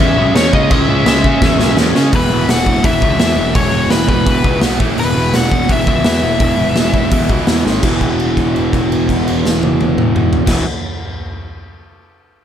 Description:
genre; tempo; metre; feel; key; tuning
punk rock; 168 BPM; 4/4; straight; E major; A4 = 438 Hz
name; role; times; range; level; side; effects
nasal lead guitar with a parked wah; melody; 0.0-7.4 s; B4 to F#5; -18 LUFS; left 3 dB; overdrive
distorted electric guitar; riff; 0.0-10.6 s; E2 to C#4; -16 LUFS; right 1 dB; distortion
fuzz picked electric bass; bass; 0.0-10.6 s; E1 to C#3; -18 LUFS; equal; overdrive
raw garage drum kit; drums; 0.0-10.6 s; crash cymbal, hi-hat, kick drum, snare drum, toms; -16 LUFS; equal; none
room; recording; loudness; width
little or no reverb; none; -11 LUFS; side -9 dB against mid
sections
0.0-2.1 A section; 2.1-7.8 B section; 7.8-10.7 C section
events
drum fill 1.4-2.1, 7.7; held note 7.8-10.5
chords
0.0 C#m; 2.1 E5; 4.6 B5; 4.8 A5; 5.0 E5; 7.7 G#5; 7.8 E5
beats
0.00 0.35 | 0.71 1.06 1.42 1.77 | 2.13 2.48 2.84 3.20 | 3.55 3.91 4.27 4.62 | 4.98 5.34 5.69 6.05 | 6.41 6.76 7.12 7.48 | 7.83 8.19 8.55 8.90 | 9.26 9.62 9.97 10.33

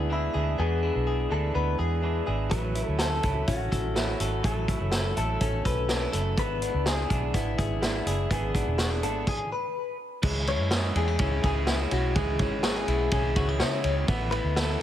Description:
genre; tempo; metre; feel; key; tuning
jangly indie pop; 124 BPM; 4/4; straight; unclear; A4 = 440 Hz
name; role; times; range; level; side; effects
direct-recorded clean electric guitar; melody; 0.0-14.8 s; E4 to C#5; -31 LUFS; left 3 dB; lush chorus, digital delay
electric guitar through a small old amp; accompaniment; 0.0-14.8 s; E2 to E4; -35 LUFS; right 8 dB; none
direct-recorded clean electric guitar; arpeggios; 0.0-14.8 s; F#3 to A4; -33 LUFS; left 3 dB; spring reverb
vintage muted fingered electric bass; bass; 0.0-14.8 s; E1 to C#3; -29 LUFS; equal; none
vintage drum kit; drums; 2.5-14.7 s; crash cymbal, hi-hat, kick drum, ride cymbal, snare drum; -29 LUFS; equal; none
room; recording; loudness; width
light reverb; none; -24 LUFS; side -11 dB against mid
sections
0.0-10.2 A section; 10.2-14.8 B section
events
stop 9.3-10.2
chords
0.0 E7; 2.5 A6; 6.4 E7; 10.2 C#m; 14.1 Asus2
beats
0.11 | 0.59 1.07 1.55 2.04 | 2.52 3.00 3.48 3.96 | 4.45 4.93 5.41 5.89 | 6.38 6.86 7.34 7.82 | 8.31 8.79 9.27 9.75 | 10.23 10.72 11.20 11.68 | 12.16 12.64 13.12 13.61 | 14.09 14.57

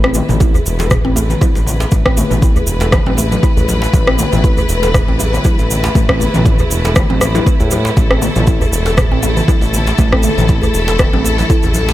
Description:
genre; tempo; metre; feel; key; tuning
afro house; 119 BPM; 4/4; swing 55% on 16ths; A minor; A4 = 440 Hz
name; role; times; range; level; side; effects
clear studio string section; sustained chords; 0.0-11.9 s; A3 to B4; -20 LUFS; left 2 dB; sidechain pumping
mallet-like synth pluck; arpeggios; 0.0-11.6 s; E3 to A4; -21 LUFS; equal; chorus, phaser, sidechain pumping, analog delay
smooth synth bass; bass; 0.0-11.9 s; E1 to A2; -17 LUFS; equal; sidechain pumping
afro-pop drum kit; drums; 0.0-11.1 s; rim click, toms; -19 LUFS; equal; overdrive, dub echo
cabasa; percussion; 0.1-11.9 s; none; -25 LUFS; right 2 dB; none
congas; percussion; 0.1-11.9 s; none; -23 LUFS; left 2 dB; none
electronic kick drum; drums; 0.4-11.6 s; none; -14 LUFS; equal; overdrive
djembe; percussion; 0.5-11.9 s; none; -23 LUFS; right 1 dB; dub echo
room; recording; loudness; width
small room reverb; echo-heavy mix; -11 LUFS; side -14 dB against mid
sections
0.0-11.9 A section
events
none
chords
0.0 A5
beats
0.41 0.91 1.41 | 1.92 2.42 2.93 3.43 | 3.94 4.44 4.94 5.45 | 5.95 6.46 6.96 7.46 | 7.97 8.47 8.98 9.48 | 9.99 10.49 10.99 11.50

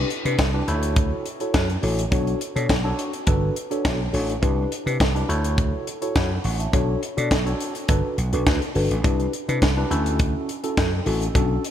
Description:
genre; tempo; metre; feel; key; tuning
early-eighties boogie funk; 104 BPM; 4/4; straight; unclear; A4 = 440 Hz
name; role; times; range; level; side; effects
tine electric piano; accompaniment; 0.0-11.6 s; C#4 to C#6; -26 LUFS; left 2 dB; phaser
vintage slap bass; bass; 0.0-11.6 s; G1 to C3; -24 LUFS; equal; none
tight funk drum kit; drums; 0.1-11.7 s; hi-hat, kick drum, snare drum; -24 LUFS; equal; none
room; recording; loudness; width
light reverb, studio ambience; none; -20 LUFS; side -10 dB against mid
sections
0.0-11.7 A section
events
none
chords
0.0 Cmaj7; 0.7 Dmaj7; 2.1 Bm7; 3.3 Gmaj9; 4.4 Cmaj7; 5.3 Dmaj7; 6.7 Bm7; 7.9 Gmaj9; 9.0 Cmaj7; 9.9 Dmaj7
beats
0.39 0.97 1.54 | 2.12 2.70 3.27 3.85 | 4.43 5.00 5.58 6.16 | 6.74 7.31 7.89 8.47 | 9.04 9.62 10.20 10.77 | 11.35

